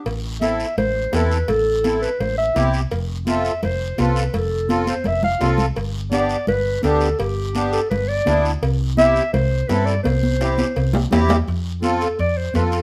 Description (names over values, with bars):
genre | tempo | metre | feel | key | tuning
latin, cumbia | 168 BPM | 4/4 | straight | unclear | A4 = 440 Hz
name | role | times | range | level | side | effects
mellow clarinet | second line | 0.0-12.8 s | G4 to F5 | -24 LUFS | equal | none
hollow-body short-scale fingered electric bass | bass | 0.1-12.8 s | F1 to G2 | -24 LUFS | equal | none
congas | percussion | 0.1-12.7 s | none | -28 LUFS | equal | none
cowbell and timbales | percussion | 0.1-12.8 s | none | -28 LUFS | equal | none
guiro | percussion | 0.1-12.8 s | none | -39 LUFS | equal | none
accordion | accompaniment | 0.4-12.8 s | B3 to A4 | -25 LUFS | equal | light tremolo tuning
room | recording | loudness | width
moderate studio reverb, RT60 0.7 s | none | -20 LUFS | mono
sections
0.1-11.5 A section; 11.5-12.8 B section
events
clarinet solo 0.1-11.5, 11.5-12.8; drum fill 4.9-5.8, 10.1-11.5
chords
0.1 Am; 2.9 F; 5.8 G; 8.6 C; 11.5 F